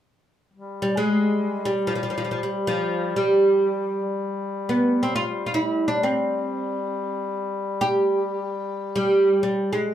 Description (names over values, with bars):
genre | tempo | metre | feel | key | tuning
turkish | free time | none | none | G makam hicaz | A4 = 441 Hz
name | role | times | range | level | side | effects
warm duduk | drone | 0.5-9.9 s | G3 | -29 LUFS | left 3 dB | none
oud | melody | 0.8-9.9 s | F3 to G4 | -21 LUFS | right 1 dB | none
room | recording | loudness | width
moderate studio ambience, RT60 0.5 s | heard from further back in the room | -21 LUFS | side -10 dB against mid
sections
0.6-9.9 A section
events
none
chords
none